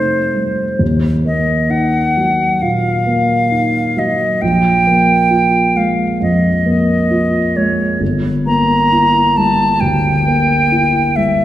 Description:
classical, impressionist duo for flute and grand piano; 67 BPM; 4/4; rubato; A4 = 444 Hz
bright concert flute; melody; 0.0-11.4 s; C5 to Bb5; -15 LUFS; equal
dark grand piano; accompaniment; 0.0-11.4 s; G1 to F4; -14 LUFS; equal
wet recital hall reverb, RT60 1.8 s; heard from further back in the room; -12 LUFS; side -13 dB against mid
0.0-11.4 A section
0.0 F9; 0.8 Ebmadd9; 4.4 Bb5; 8.0 Gm6
| 0.81 1.71 2.61 3.52 | 4.42 5.31 6.21 7.11 | 8.01 8.92 9.81 10.70

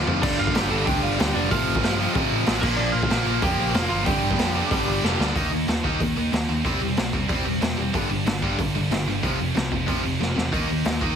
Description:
punk rock; 186 BPM; 4/4; straight; A4 = 440 Hz
cranked stack guitar; riff; 0.0-11.2 s; F2 to Eb4; -28 LUFS; left 12 dB; overdrive
tight distorted guitar; riff; 0.0-11.2 s; F2 to Eb4; -27 LUFS; right 13 dB; distortion
overdriven picked electric bass; bass; 0.0-11.1 s; E1 to G2; -28 LUFS; equal
raw garage drum kit; drums; 0.1-11.1 s; crash cymbal, hi-hat, kick drum, snare drum, toms; -26 LUFS; equal
lightly driven lead guitar; melody; 0.2-5.0 s; Bb3 to A5; -28 LUFS; right 2 dB
scooped high-gain guitar; riff; 0.2-11.2 s; F2 to Eb4; -30 LUFS; right 2 dB; distortion
light reverb; heavily compressed radio sound; -20 LUFS; side -7 dB against mid
0.0-5.4 A section; 5.4-11.2 B section
drum fill 0.0, 5.0-5.4, 10.2-10.5
0.2 G5; 1.5 F/A; 2.6 Bb; 4.1 G5; 5.4 Eb5; 6.6 C/E; 7.9 G5; 9.2 F5; 10.5 Eb5
| 0.23 0.55 0.87 1.19 | 1.51 1.83 2.15 2.47 | 2.79 3.11 3.43 3.75 | 4.07 4.39 4.72 5.04 | 5.36 5.68 6.00 6.33 | 6.65 6.97 7.29 7.62 | 7.94 8.27 8.59 8.91 | 9.23 9.56 9.88 10.20 | 10.53 10.85

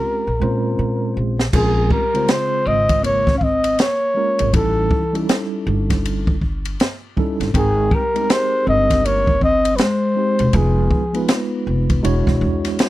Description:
hip hop, jazz-hop; 80 BPM; 4/4; swing 62% on 16ths; Bb dorian; A4 = 440 Hz
breathy flugelhorn; melody; 0.0-11.3 s; Ab4 to F5; -19 LUFS; equal
mellow electric guitar; second line; 0.0-11.3 s; Eb3 to F4; -24 LUFS; left 3 dB
mellow tine electric piano; accompaniment; 0.0-12.9 s; Db3 to G5; -23 LUFS; right 2 dB; medium stereo tremolo
upright bass; bass; 0.3-12.8 s; E1 to Bb2; -21 LUFS; equal
open jazz drum kit; drums; 1.4-12.9 s; crash cymbal, hi-hat, kick drum, ride cymbal, snare drum; -19 LUFS; equal
little or no reverb; dry, close 1970s-style studio recording; -15 LUFS; side -16 dB against mid
0.0-1.5 A section; 1.5-12.9 B section
drum fill 0.0-1.5
0.0 Bbm9; 4.5 A7#11; 7.5 Abmaj9; 10.5 Fm7b5; 12.0 E13
0.04 0.79 | 1.54 2.29 3.04 3.79 | 4.54 5.29 6.04 6.79 | 7.54 8.29 9.04 9.79 | 10.54 11.29 12.04 12.79

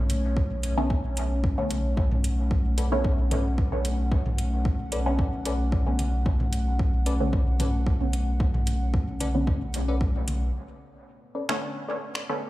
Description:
dub techno; 112 BPM; 4/4; straight; B minor; A4 = 438 Hz
dark analog pad; sustained chords; 0.0-12.5 s; A3 to F#5; -33 LUFS; left 1 dB; chorus, sidechain pumping
soft dub sub bass; bass; 0.0-10.5 s; B1; -27 LUFS; equal; sidechain pumping
deep house drum kit; drums; 0.1-12.3 s; finger snaps, hi-hat; -35 LUFS; equal; overdrive
electronic congas and toms; percussion; 0.1-10.4 s; -36 LUFS; equal; overdrive, sidechain pumping on toms, sidechain pumping on perc, dub echo
electronic kick drum; drums; 0.4-10.1 s; -25 LUFS; equal; overdrive
filtered dub chord stab; stabs; 0.8-12.4 s; D3 to C#4; -32 LUFS; equal; chorus, phaser, sidechain pumping, dub echo
wavetable chord stab; riff; 2.8-12.0 s; C#4 to D5; -36 LUFS; left 2 dB; sidechain pumping, dub echo
little or no reverb; played on a big sound system in a bare room, large studio reverb; -23 LUFS; side -16 dB against mid
0.0-10.5 A section; 10.5-12.5 B section
filter sweep on synth stab 0.0-10.5; filter sweep on analog synth pad 10.5-12.5
0.0 Bm9
0.37 0.90 1.44 | 1.97 2.51 3.04 3.58 | 4.12 4.65 5.19 5.72 | 6.26 6.79 7.33 7.87 | 8.40 8.94 9.47 10.01 | 10.54 11.08 11.62 12.15

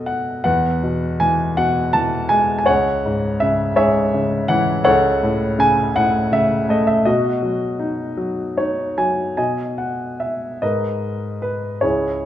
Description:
classical, lyrical solo piano; 48-56 BPM (dotted quarters); 6/8; rubato; E major; A4 = 440 Hz
warm grand piano; solo; 0.0-12.3 s; C#2 to A5; -16 LUFS; equal
moderate recital hall reverb, RT60 1.7 s; -16 LUFS; side -11 dB against mid
0.5-9.4 A section; 9.4-12.3 B section
grand piano fill 8.2-9.4
0.5 Eadd9; 2.7 C#m; 4.9 F#m/C#; 7.1 B; 10.6 G#madd9
| 0.45 1.58 | 2.69 3.79 | 4.87 5.96 | 7.06 8.19 | 9.38 10.62 | 11.83

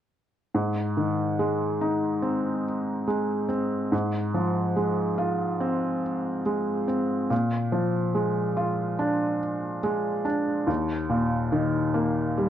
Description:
folk; 71 BPM; 4/4; straight; Ab major; A4 = 442 Hz
felt-muted upright piano; accompaniment; 0.5-12.5 s; Eb2 to F4; -24 LUFS; equal
wet large studio reverb, RT60 0.8 s; worn, warbling old tape, cassette tape, warbly pitch drift; -24 LUFS; side -10 dB against mid
0.5-12.5 A section
0.5 Ab; 3.9 Fm/Ab; 7.3 Bb7; 10.7 Eb5
| 0.54 1.39 2.23 3.08 | 3.93 4.77 5.62 6.46 | 7.31 8.15 9.00 9.84 | 10.69 11.53 12.38

